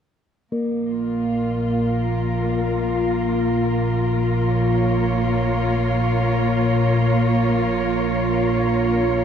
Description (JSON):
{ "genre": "dark ambient drone", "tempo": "free time", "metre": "none", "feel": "none", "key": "Bb minor", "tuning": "A4 = 440 Hz", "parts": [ { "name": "dark chamber cello section", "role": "sustained chords", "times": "0.5-9.2 s", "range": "Bb3 to Db5", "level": "-23 LUFS", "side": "right 1 dB", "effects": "none" }, { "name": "overtone-sweeping drone", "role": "drone", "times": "1.0-9.2 s", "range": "Bb1 to Bb2", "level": "-20 LUFS", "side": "left 1 dB", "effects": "chorus, built-in reverb, phaser" }, { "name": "bronze singing bowl", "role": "texture", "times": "0.5-9.2 s", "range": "Bb3 to Bb4", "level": "-28 LUFS", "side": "right 1 dB", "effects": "none" } ], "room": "wet huge ambient reverb, RT60 7.7 s", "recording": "dark, warm production", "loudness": "-18 LUFS", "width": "side -8 dB against mid", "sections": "0.5-9.2 A section", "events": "none", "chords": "0.5 Bbm" }